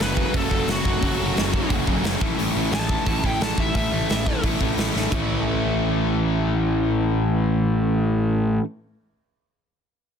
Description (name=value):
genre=punk rock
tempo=176 BPM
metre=4/4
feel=straight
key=A major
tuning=A4 = 439 Hz
part: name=smooth overdriven lead guitar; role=melody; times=0.0-4.4 s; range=F#4 to A5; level=-29 LUFS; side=equal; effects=ping-pong delay
part: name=cranked stack guitar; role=riff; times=0.0-8.6 s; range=F#2 to A3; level=-26 LUFS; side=left 13 dB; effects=overdrive
part: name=overdriven electric guitar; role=riff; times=0.0-8.6 s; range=A2 to A4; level=-26 LUFS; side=right 12 dB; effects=none
part: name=thick fuzz guitar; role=riff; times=0.0-2.2 s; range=F#3 to A4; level=-30 LUFS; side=right 3 dB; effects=distortion
part: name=fuzz picked electric bass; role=bass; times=0.0-8.6 s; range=F#1 to A1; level=-26 LUFS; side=equal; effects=overdrive
part: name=big rock drum kit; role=drums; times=0.0-5.2 s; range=crash cymbal, hi-hat, kick drum, snare drum, toms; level=-25 LUFS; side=equal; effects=none
room=light reverb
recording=dense, heavily limited modern master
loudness=-20 LUFS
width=side -7 dB against mid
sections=0.0-5.1 A section; 5.1-7.9 B section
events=lead electric guitar solo 0.0-5.1; drum fill 4.9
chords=0.0 F#m; 2.2 A